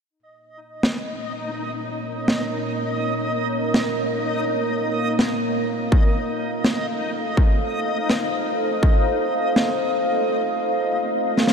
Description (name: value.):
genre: half-time drum and bass.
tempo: free time.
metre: none.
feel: none.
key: Bb harmonic minor.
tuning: A4 = 441 Hz.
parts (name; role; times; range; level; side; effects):
deep dark ambient pad; sustained chords; 1.4-11.5 s; Bb3 to F5; -24 LUFS; equal; chorus, built-in reverb, vintage 12-bit sampler grit, sidechain pumping.
backwards swelling texture; texture; 0.6-10.3 s; Eb4 to Eb5; -27 LUFS; right 1 dB; built-in reverb.
snare drum; drums; 0.8-11.5 s; none; -26 LUFS; equal; none.
electronic kick drum; drums; 5.9-8.9 s; none; -16 LUFS; equal; distortion, overdrive.
room: wet huge ambient reverb, RT60 8.9 s.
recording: dreamy mix soaked in reverb.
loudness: -20 LUFS.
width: side -6 dB against mid.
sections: 0.1-11.5 A section.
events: drum fill 11.4.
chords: 0.1 Bbm; 5.9 F.